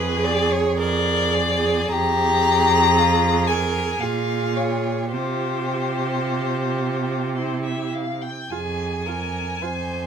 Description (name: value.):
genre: classical, slow romantic movement for string quartet.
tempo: 51-59 BPM.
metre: 3/4.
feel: rubato.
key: F minor.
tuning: A4 = 440 Hz.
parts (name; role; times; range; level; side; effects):
rich violin; melody; 0.0-10.1 s; B4 to Bb5; -23 LUFS; left 5 dB; none.
rich violin; second line; 0.0-10.1 s; F4 to C5; -27 LUFS; equal; none.
warm viola; accompaniment; 0.0-9.7 s; E4 to Ab4; -27 LUFS; right 6 dB; none.
rich cello; bass; 0.0-10.1 s; F2 to C3; -25 LUFS; right 4 dB; none.
room: moderate studio reverb, RT60 0.5 s.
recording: none.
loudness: -19 LUFS.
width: side -7 dB against mid.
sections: 0.0-10.1 A section.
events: none.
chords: 0.0 Fm; 4.0 Bbm; 5.1 Csus4; 7.4 C; 8.5 Fm.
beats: 0.79 | 1.92 2.97 4.03 | 5.13 6.25 7.37 | 8.51 9.62.